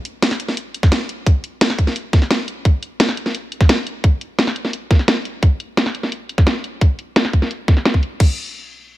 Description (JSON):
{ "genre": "dark technical drum and bass", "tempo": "173 BPM", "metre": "4/4", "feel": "straight", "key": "none", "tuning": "none", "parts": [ { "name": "drum and bass drum kit", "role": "drums", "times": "0.1-8.3 s", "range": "crash cymbal, hi-hat, snare drum", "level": "-18 LUFS", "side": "equal", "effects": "low-pass filter on snare, low-pass filter on hats, low-pass filter on cymbals" }, { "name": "electronic kick drum", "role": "drums", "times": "0.8-8.3 s", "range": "none", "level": "-12 LUFS", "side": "equal", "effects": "none" } ], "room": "little or no reverb", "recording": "none", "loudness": "-16 LUFS", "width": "side -16 dB against mid", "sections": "0.0-8.2 A section", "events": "none", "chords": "none" }